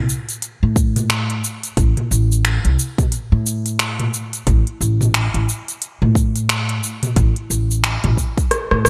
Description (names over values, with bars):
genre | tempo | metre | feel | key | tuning
organic downtempo | 89 BPM | 4/4 | swing 60% on 16ths | A minor | A4 = 440 Hz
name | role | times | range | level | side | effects
upright bass | bass | 0.0-8.9 s | A1 to A2 | -20 LUFS | equal | none
organic electronic drum kit | drums | 0.1-8.9 s | cabasa, finger snaps, hi-hat, rim click, toms | -22 LUFS | equal | gated reverb
electronic kick drum | drums | 0.8-8.5 s | none | -20 LUFS | equal | none
room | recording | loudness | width
little or no reverb | bright 1980s-style digital production | -19 LUFS | mono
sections
0.0-8.9 A section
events
drum fill 8.5-8.9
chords
none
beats
0.42 1.10 | 1.77 2.44 3.12 3.79 | 4.47 5.14 5.82 6.49 | 7.16 7.84 8.51